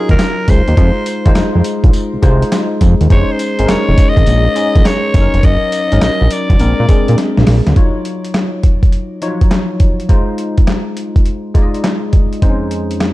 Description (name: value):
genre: R&B, new jack swing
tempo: 103 BPM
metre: 4/4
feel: swing 67% on 16ths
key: Eb dorian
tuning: A4 = 440 Hz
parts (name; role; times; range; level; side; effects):
- raspy alto saxophone; melody; 0.0-7.2 s; Bb4 to Eb5; -18 LUFS; left 1 dB; none
- bell-like tine electric piano; accompaniment; 0.0-13.1 s; F2 to Eb5; -18 LUFS; left 2 dB; analog chorus
- fat analog bass; bass; 0.1-7.7 s; F1 to Bb2; -12 LUFS; equal; none
- dusty soul sampler-style drum kit; drums; 0.1-13.1 s; handclaps, hi-hat, kick drum, snare drum, tambourine; -12 LUFS; equal; overdrive
room: little or no reverb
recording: dark, warm production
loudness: -10 LUFS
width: side -17 dB against mid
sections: 0.0-7.8 A section; 7.8-13.1 B section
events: drum fill 7.2-7.8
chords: 0.0 Ebm9; 0.8 Fm7; 3.1 Bbm11/F; 5.1 Gb6; 6.6 Bb9; 7.8 Ebm9; 10.1 Fm7; 12.4 Dbmaj9/F